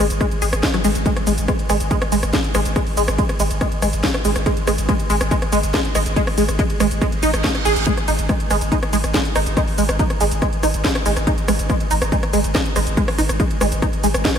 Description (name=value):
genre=driving peak-time techno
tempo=141 BPM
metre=4/4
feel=straight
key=unclear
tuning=A4 = 440 Hz
part: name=tight sequenced synth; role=riff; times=0.0-14.3 s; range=F#3 to G#4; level=-21 LUFS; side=right 1 dB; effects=chorus, phaser, overdrive, sidechain pumping, analog delay
part: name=warm sub bass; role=bass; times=0.0-14.2 s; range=G#1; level=-24 LUFS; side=equal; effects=overdrive, sidechain pumping, low-pass filter
part: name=techno drum kit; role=drums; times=0.1-14.4 s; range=hi-hat, ride cymbal, rim click, shaker, snare drum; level=-23 LUFS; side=equal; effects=overdrive, small room ambience
part: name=electronic kick drum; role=drums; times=0.2-14.3 s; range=none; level=-21 LUFS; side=equal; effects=overdrive, small room ambience
part: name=reverse cymbal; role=sound effects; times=7.2-7.9 s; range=none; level=-31 LUFS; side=right 5 dB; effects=none
room=moderate cathedral reverb, RT60 4.7 s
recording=dreamy mix soaked in reverb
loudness=-16 LUFS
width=side -8 dB against mid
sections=0.0-14.4 A section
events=reverse cymbal 7.2-7.9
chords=0.0 G#5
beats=0.21 0.63 | 1.06 1.48 1.91 2.33 | 2.76 3.18 3.61 4.04 | 4.46 4.89 5.31 5.74 | 6.16 6.59 7.01 7.44 | 7.87 8.29 8.72 9.14 | 9.57 9.99 10.42 10.84 | 11.27 11.70 12.12 12.55 | 12.97 13.40 13.82 14.25